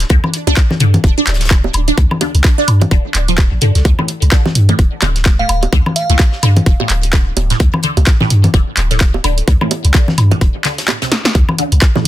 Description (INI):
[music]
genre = minimal techno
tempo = 128 BPM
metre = 4/4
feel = swing 58% on 16ths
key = D minor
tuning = A4 = 441 Hz
[part]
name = punchy sub bass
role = bass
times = 0.0-12.1 s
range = D1 to G2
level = -13 LUFS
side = equal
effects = sidechain pumping
[part]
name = punchy analog drum machine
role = drums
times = 0.0-12.1 s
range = handclaps, hi-hat, snare drum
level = -18 LUFS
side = equal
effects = none
[part]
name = warm soul drum kit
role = drums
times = 0.0-12.1 s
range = hi-hat, snare drum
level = -28 LUFS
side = left 3 dB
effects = none
[part]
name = resonant blip pluck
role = riff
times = 0.1-12.0 s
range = A2 to D4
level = -20 LUFS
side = right 1 dB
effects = phaser, wide subtle chorus, sidechain pumping, digital delay
[part]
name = electronic kick drum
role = drums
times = 0.1-11.9 s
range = none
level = -11 LUFS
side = equal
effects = overdrive
[part]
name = congas, woodblock and bongos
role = percussion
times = 0.2-12.0 s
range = none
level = -19 LUFS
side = equal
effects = tape echo
[part]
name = glassy synth bell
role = melody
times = 5.4-6.6 s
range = F5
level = -21 LUFS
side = right 1 dB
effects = chorus, tape echo
[sound]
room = little or no reverb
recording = dense, heavily limited modern master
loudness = -10 LUFS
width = side -14 dB against mid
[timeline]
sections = 0.0-12.1 A section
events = drum fill 11.1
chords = 0.0 D5